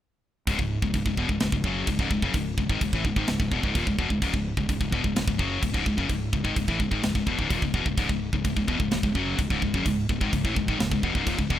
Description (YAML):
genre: heavy metal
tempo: 128 BPM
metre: 4/4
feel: straight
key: C# minor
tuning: A4 = 439 Hz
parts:
  - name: distorted electric guitar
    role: riff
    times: 0.5-11.6 s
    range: C#2 to F#3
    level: -35 LUFS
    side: right 13 dB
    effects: overdrive
  - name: high-gain distorted guitar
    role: riff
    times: 0.5-11.6 s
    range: C#2 to F#3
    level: -27 LUFS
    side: left 5 dB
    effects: distortion
  - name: fuzz fingered electric bass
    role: bass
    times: 0.5-11.6 s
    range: C#1 to A1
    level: -32 LUFS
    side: right 1 dB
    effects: overdrive
  - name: tight metal drum kit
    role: drums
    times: 0.5-11.6 s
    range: crash cymbal, kick drum, snare drum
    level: -28 LUFS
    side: right 1 dB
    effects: none
  - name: overdriven electric guitar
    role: riff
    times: 8.0-11.6 s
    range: C#2 to F#3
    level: -33 LUFS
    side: right 4 dB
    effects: none
room: studio ambience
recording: rough home demo mix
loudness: -23 LUFS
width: side -12 dB against mid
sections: 0.5-11.6 A section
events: none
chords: 0.5 C#m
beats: | 0.48 0.95 1.42 1.88 | 2.35 2.82 3.29 3.76 | 4.23 4.70 5.16 5.63 | 6.10 6.57 7.04 7.51 | 7.98 8.45 8.92 9.39 | 9.86 10.33 10.80 11.27